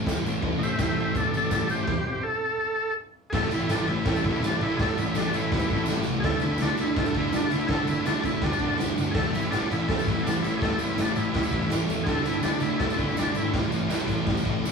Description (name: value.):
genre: garage rock duo or trio.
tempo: 165 BPM.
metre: 4/4.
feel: straight.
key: A minor.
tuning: A4 = 440 Hz.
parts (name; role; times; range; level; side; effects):
thick fuzz guitar; riff; 0.0-14.7 s; A2 to D4; -27 LUFS; equal; distortion.
growling fingered electric bass; bass; 0.1-14.7 s; G1 to E2; -33 LUFS; equal; overdrive.
raw garage drum kit; drums; 0.1-14.7 s; crash cymbal, kick drum, ride cymbal, snare drum; -28 LUFS; equal; none.
tambourine; percussion; 0.1-14.7 s; none; -43 LUFS; right 3 dB; none.
overdriven combo organ; melody; 0.6-13.5 s; D4 to E5; -29 LUFS; equal; none.
room: moderate small room reverb, RT60 0.5 s.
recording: rough rehearsal-room recording, small room ambience.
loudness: -23 LUFS.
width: side -5 dB against mid.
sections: 0.0-3.3 A section; 3.3-14.7 B section.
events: transistor combo organ solo 0.0-3.3; stop 1.9-3.3; drum fill 9.0.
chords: 0.0 Am; 3.3 A5; 6.2 D5; 9.1 A5; 12.1 D5; 13.5 A5.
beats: 0.06 | 0.42 0.79 1.15 1.51 | 1.88 2.24 2.60 2.97 | 3.33 3.69 4.05 4.42 | 4.78 5.14 5.51 5.87 | 6.24 6.60 6.96 7.33 | 7.69 8.05 8.42 8.78 | 9.15 9.51 9.88 10.24 | 10.61 10.97 11.34 11.70 | 12.07 12.44 12.80 13.17 | 13.54 13.90 14.27 14.64.